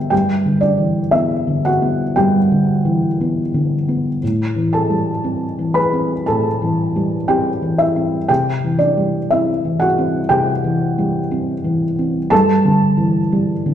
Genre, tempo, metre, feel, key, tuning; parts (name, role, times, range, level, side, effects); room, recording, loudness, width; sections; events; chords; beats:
neoclassical minimalist piano; 59 BPM; 4/4; rubato; A4 = 440 Hz
felt-muted upright piano; solo; 0.0-13.7 s; G2 to B5; -15 LUFS; equal
moderate recital hall reverb, RT60 1.4 s; recorded in a church or concert hall; -15 LUFS; side -10 dB against mid
0.0-13.7 A section
0.1 Em7/G; 4.2 Am7; 8.3 C; 12.3 G5
| 0.12 1.14 2.17 3.20 | 4.22 5.23 6.25 7.27 | 8.29 9.30 10.31 11.31 | 12.31 13.32